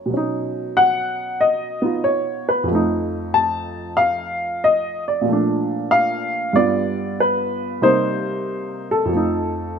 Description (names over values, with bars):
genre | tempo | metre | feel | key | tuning
solo jazz | 93 BPM | 4/4 | swing 67% on 8ths | unclear | A4 = 440 Hz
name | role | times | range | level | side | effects
warm upright piano | solo | 0.0-9.8 s | F2 to A5 | -18 LUFS | equal | none
room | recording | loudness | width
light reverb | close, detailed microphones | -18 LUFS | side -6 dB against mid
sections
0.0-9.8 A section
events
none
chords
0.1 Badd9; 2.7 F7; 5.3 Bbmaj7; 6.5 G7; 7.8 Cm7; 9.1 F7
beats
| 0.11 0.76 1.40 2.04 | 2.69 3.33 3.97 4.62 | 5.26 5.90 6.54 7.18 | 7.82 8.46 9.10 9.74